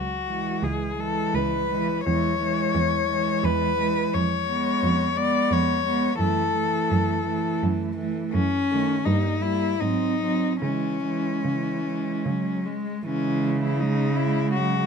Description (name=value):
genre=classical, lyrical piece for cello ensemble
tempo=71-89 BPM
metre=3/4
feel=rubato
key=C# minor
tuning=A4 = 440 Hz
part: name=rich cello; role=melody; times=0.0-14.9 s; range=C#4 to D5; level=-25 LUFS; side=left 5 dB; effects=none
part: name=warm cello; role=bass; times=0.0-14.9 s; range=C#2 to C#3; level=-27 LUFS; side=right 2 dB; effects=none
part: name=warm cello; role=second line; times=0.3-14.9 s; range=G#3 to B#3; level=-29 LUFS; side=right 9 dB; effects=none
part: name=warm cello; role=accompaniment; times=0.3-14.9 s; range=D#3 to G#3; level=-30 LUFS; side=left 1 dB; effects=none
room=light reverb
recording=none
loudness=-22 LUFS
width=side -6 dB against mid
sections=0.0-13.1 A section; 13.1-14.9 A section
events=none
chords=0.0 C#m; 2.1 C#m/E; 4.1 C#7/E#; 6.2 F#m7; 8.3 D#dim/F#; 9.1 Gm6; 9.8 G#7; 10.6 C#m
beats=0.63 1.34 | 2.06 2.74 3.43 | 4.13 4.82 5.51 | 6.20 6.92 7.63 | 8.34 9.06 9.81 | 10.62 11.45 12.26 | 13.07 13.81 14.55